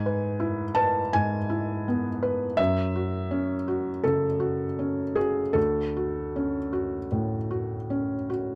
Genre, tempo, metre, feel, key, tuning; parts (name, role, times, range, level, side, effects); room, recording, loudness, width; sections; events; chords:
neoclassical minimalist piano; 76-84 BPM; 4/4; rubato; A4 = 441 Hz
felt-muted upright piano; solo; 0.0-8.6 s; D2 to A5; -27 LUFS; equal
light reverb; -27 LUFS; mono
0.0-8.6 A section
0.0 E/G#; 2.6 F#m7; 5.6 Dmaj7